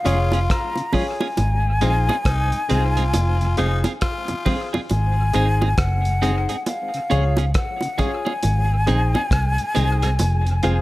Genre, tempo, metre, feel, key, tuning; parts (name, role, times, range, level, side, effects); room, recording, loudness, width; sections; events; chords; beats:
roots reggae; 68 BPM; 4/4; swing 62% on 16ths; Ab mixolydian; A4 = 440 Hz
breathy concert flute; melody; 0.0-10.8 s; F5 to Bb5; -25 LUFS; left 2 dB; tape echo
growling tenor saxophone; second line; 0.0-4.7 s; Eb4 to F4; -30 LUFS; left 3 dB; tape echo
clear upright piano; stabs; 0.0-10.8 s; Eb4 to Db5; -27 LUFS; left 3 dB
clean electric guitar; accompaniment; 0.1-10.8 s; C4 to Ab4; -28 LUFS; right 5 dB; tape echo
mellow tonewheel organ; accompaniment; 0.1-10.7 s; F2 to Db4; -33 LUFS; left 1 dB
vintage muted fingered electric bass; bass; 0.1-10.8 s; F1 to Db2; -19 LUFS; equal
cloth-damped thuddy drum kit; drums; 0.1-10.8 s; hi-hat, kick drum, rim click; -25 LUFS; equal; dub echo
bongos; percussion; 0.3-10.4 s; -26 LUFS; right 2 dB
small room reverb; -18 LUFS; side -17 dB against mid
0.0-10.8 A section
0.0 Db; 1.4 Ab; 3.1 Fm; 4.9 Ab; 6.7 Db; 8.4 Ab; 10.2 Fm
0.49 | 1.37 2.26 3.14 4.02 | 4.90 5.79 6.67 7.55 | 8.43 9.31 10.20